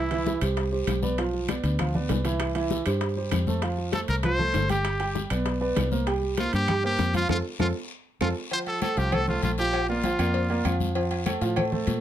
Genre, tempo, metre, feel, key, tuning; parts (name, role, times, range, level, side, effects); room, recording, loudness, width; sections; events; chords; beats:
latin, salsa; 196 BPM; 4/4; straight; F major; A4 = 443 Hz
bright trumpet; melody; 0.0-0.4, 3.9-10.8 s; E4 to C5; -28 LUFS; equal
warm grand piano; accompaniment; 0.0-12.0 s; E3 to G5; -29 LUFS; right 4 dB
fingered electric bass; bass; 0.0-12.0 s; G1 to Bb2; -28 LUFS; left 1 dB
bongos and cowbell; percussion; 0.1-12.0 s; -36 LUFS; left 8 dB
congas; percussion; 0.1-12.0 s; -32 LUFS; left 4 dB
timbales and agogo bells; percussion; 0.1-12.0 s; -35 LUFS; right 3 dB
guiro; percussion; 0.3-12.0 s; -42 LUFS; left 6 dB
claves; percussion; 0.4-11.7 s; -42 LUFS; right 4 dB
light reverb; close, detailed microphones; -23 LUFS; side -11 dB against mid
0.0-8.5 A section; 8.5-12.0 B section
band accent 7.3-8.5; drum fill 7.9-8.5
0.0 C; 1.2 Dm13; 2.4 C; 3.6 Fadd9; 4.8 G; 6.1 C5; 7.3 F; 9.7 Bb; 11.0 F
0.26 0.57 0.88 | 1.18 1.49 1.79 2.10 | 2.40 2.71 3.01 3.32 | 3.63 3.93 4.24 4.54 | 4.85 5.15 5.46 5.76 | 6.07 6.38 6.68 6.99 | 7.29 7.60 7.90 8.21 | 8.51 8.82 9.12 9.43 | 9.73 10.04 10.34 10.65 | 10.95 11.26 11.56 11.87